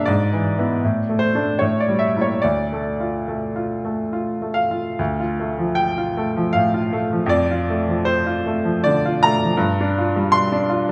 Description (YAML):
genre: classical, romantic character piece for solo piano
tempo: 69-84 BPM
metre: 3/4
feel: rubato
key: D minor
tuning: A4 = 439 Hz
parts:
  - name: bright baby grand piano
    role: solo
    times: 0.0-10.9 s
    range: D2 to C6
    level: -20 LUFS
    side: equal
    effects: none
room: wet recital hall reverb, RT60 1.4 s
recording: none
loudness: -20 LUFS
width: mono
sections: 0.0-5.0 A section; 5.0-10.9 B section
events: none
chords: 0.1 E7/G#; 0.8 D5/A; 1.6 A5; 2.4 Dm; 7.3 Dm/F; 9.6 Gm7